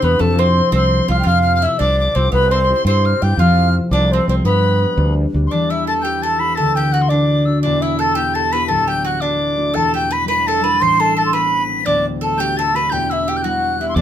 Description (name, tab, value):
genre	celtic folk, Celtic jig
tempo	113 BPM (dotted quarters)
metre	6/8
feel	straight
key	E minor from 5.5 s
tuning	A4 = 440 Hz
part	reedy baroque flute	melody	0.0-14.0 s	A4 to C6	-18 LUFS	right 1 dB	none
part	breathy bright tin whistle	second line	0.0-14.0 s	A5 to C7	-22 LUFS	left 5 dB	none
part	mandolin	second line	0.0-14.0 s	A3 to C5	-24 LUFS	right 4 dB	none
part	concert harp	accompaniment	0.0-14.0 s	D1 to B4	-20 LUFS	left 2 dB	none
part	fretless electric bass	bass	0.0-5.5, 14.0 s	C2 to G2	-16 LUFS	equal	none
room	light reverb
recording	close, detailed microphones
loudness	-14 LUFS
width	side -10 dB against mid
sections	0.0-5.5 A section; 5.5-14.0 B section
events	none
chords	0.2 F; 2.3 C; 3.4 F; 4.4 G; 5.5 Em; 6.6 D; 7.6 Em; 8.7 D; 9.7 Em7; 10.8 Amadd9; 11.9 D; 12.9 Em